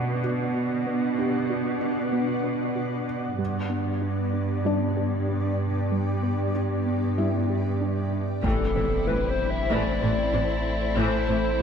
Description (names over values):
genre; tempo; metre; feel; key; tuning
cinematic, hybrid orchestral and electronic film score; 95 BPM; 4/4; straight; A dorian; A4 = 440 Hz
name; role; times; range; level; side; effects
granular cloud pad; sustained chords; 0.0-11.6 s; A3 to F#5; -29 LUFS; left 2 dB; built-in reverb, low-pass filter
soft round pluck; arpeggios; 0.0-11.5 s; G3 to B4; -34 LUFS; right 3 dB; chorus, low-pass filter, ping-pong delay
rich symphonic cello section; bass; 0.0-11.4 s; G2 to B2; -28 LUFS; right 3 dB; none
felt-muted upright piano; texture; 0.0-11.6 s; D4 to G5; -35 LUFS; left 5 dB; ping-pong delay
reedy FM lead; melody; 8.4-11.6 s; A4 to E5; -28 LUFS; left 1 dB; chorus, low-pass filter, ping-pong delay
clear symphonic violin section; second line; 8.4-11.6 s; C4 to E4; -32 LUFS; left 4 dB; none
clear symphonic viola section; accompaniment; 8.4-11.6 s; E3 to A3; -32 LUFS; left 2 dB; low-pass filter
punchy sub bass; bass; 8.4-11.6 s; A1; -30 LUFS; left 1 dB; none
rich symphonic double bass section; bass; 8.4-11.6 s; A1; -33 LUFS; right 3 dB; none
solo taiko drums; drums; 8.4-9.7 s; none; -32 LUFS; left 2 dB; none
impact; sound effects; 8.4-11.0 s; none; -33 LUFS; left 1 dB; none
room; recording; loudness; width
moderate scoring stage reverb, RT60 2.0 s; dark, warm production; -23 LUFS; side -7 dB against mid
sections
0.0-8.4 A section; 8.4-11.6 B section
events
build-up 0.0-8.4; impact 8.4-11.0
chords
0.0 Bm; 3.4 G; 8.4 Am